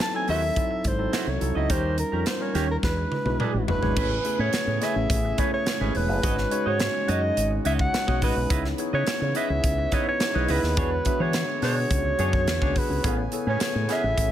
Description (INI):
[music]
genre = polished 1980s jazz-funk pop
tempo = 106 BPM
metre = 4/4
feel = straight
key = unclear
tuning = A4 = 440 Hz
[part]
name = breathy soprano saxophone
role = melody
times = 0.0-14.3 s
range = A#4 to A5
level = -28 LUFS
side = equal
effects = none
[part]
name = tine electric piano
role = accompaniment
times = 0.0-14.3 s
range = F#3 to E5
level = -30 LUFS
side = left 1 dB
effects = wide subtle chorus
[part]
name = modern studio drum kit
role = drums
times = 0.0-14.3 s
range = crash cymbal, hi-hat, kick drum, snare drum, toms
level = -28 LUFS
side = equal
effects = gated reverb
[part]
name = semi-hollow electric guitar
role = riff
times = 0.1-14.2 s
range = B3 to D#5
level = -33 LUFS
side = right 6 dB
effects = wide subtle chorus
[part]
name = fingered electric bass with an envelope filter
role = bass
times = 0.3-14.3 s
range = E1 to E3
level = -27 LUFS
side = equal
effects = none
[part]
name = pipe organ, foundations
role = sustained chords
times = 4.0-14.3 s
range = C#3 to G#5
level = -38 LUFS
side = equal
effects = none
[sound]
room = small room ambience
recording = none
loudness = -22 LUFS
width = side -11 dB against mid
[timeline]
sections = 0.0-4.0 A section; 4.0-14.3 B section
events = drum fill 2.8-4.0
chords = 0.0 G#7b9b13; 1.7 D#7; 2.8 E7; 4.0 Amaj9; 6.2 G#7sus4; 8.5 C#m9; 10.8 E13; 13.0 Amaj9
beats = 0.00 0.56 1.13 | 1.70 2.26 2.83 3.40 | 3.96 4.53 5.10 5.67 | 6.23 6.80 7.37 7.94 | 8.50 9.07 9.64 10.21 | 10.77 11.34 11.91 12.48 | 13.04 13.61 14.18